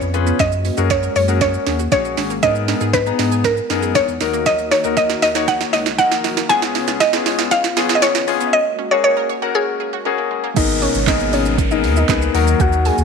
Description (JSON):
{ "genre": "dance-pop", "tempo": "118 BPM", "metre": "4/4", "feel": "straight", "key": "G# minor", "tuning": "A4 = 440 Hz", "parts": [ { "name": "mallet-like synth pluck", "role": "melody", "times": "0.0-10.3 s", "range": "G#4 to G#5", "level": "-18 LUFS", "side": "equal", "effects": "chorus, tape echo" }, { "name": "clear concert grand piano", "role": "accompaniment", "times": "0.0-13.0 s", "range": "F#3 to A#5", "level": "-22 LUFS", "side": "left 12 dB", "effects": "sidechain pumping" }, { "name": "warm analog pad", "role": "sustained chords", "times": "0.0-13.0 s", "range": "B2 to A#4", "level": "-28 LUFS", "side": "equal", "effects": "chorus, sidechain pumping" }, { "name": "wide unison pluck", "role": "arpeggios", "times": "0.0-10.6 s", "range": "F#3 to F#6", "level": "-29 LUFS", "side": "right 12 dB", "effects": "auto-pan, sidechain pumping, tape echo" }, { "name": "warm sub bass", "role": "bass", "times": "0.0-13.0 s", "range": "G#1 to G#2", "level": "-22 LUFS", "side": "equal", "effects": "sidechain pumping" }, { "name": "smooth R&B drum kit", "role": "drums", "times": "0.0-13.0 s", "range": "crash cymbal, handclaps, hi-hat, kick drum, shaker, snare drum", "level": "-21 LUFS", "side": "right 7 dB", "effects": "overdrive" }, { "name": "soft round pluck", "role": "melody", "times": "10.6-13.0 s", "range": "C#4 to G#5", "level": "-20 LUFS", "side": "left 1 dB", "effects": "chorus, phaser, sidechain pumping" }, { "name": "downlifter", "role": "sound effects", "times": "10.6-13.0 s", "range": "none", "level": "-26 LUFS", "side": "left 1 dB", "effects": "none" } ], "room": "light reverb", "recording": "1960s-style stereo with parts hard left and right, high-pass filter", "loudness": "-14 LUFS", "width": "side -5 dB against mid", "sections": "0.0-10.6 A section; 10.6-13.0 B section", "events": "build-up 0.0-10.6; drum fill 0.0-8.5; break 8.5-10.6; drop 10.6-13.0", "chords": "0.4 F#add9; 2.4 G#madd9; 4.2 D#m; 6.5 C#7; 8.5 F#add9; 10.6 G#madd9; 12.3 D#m" }